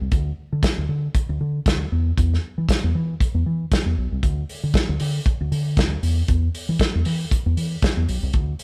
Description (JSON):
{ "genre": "disco", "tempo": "117 BPM", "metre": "4/4", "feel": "swing 56% on 16ths", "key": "unclear", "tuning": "A4 = 440 Hz", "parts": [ { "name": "fingered electric bass", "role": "bass", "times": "0.0-8.5 s", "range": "B1 to E3", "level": "-25 LUFS", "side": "equal", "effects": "none" }, { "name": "warm soul drum kit", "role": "drums", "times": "0.1-8.6 s", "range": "hi-hat, kick drum, snare drum", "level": "-24 LUFS", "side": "equal", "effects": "none" } ], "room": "light reverb", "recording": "band playing live in one room", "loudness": "-22 LUFS", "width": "mono", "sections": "0.0-8.6 A section", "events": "none", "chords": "none" }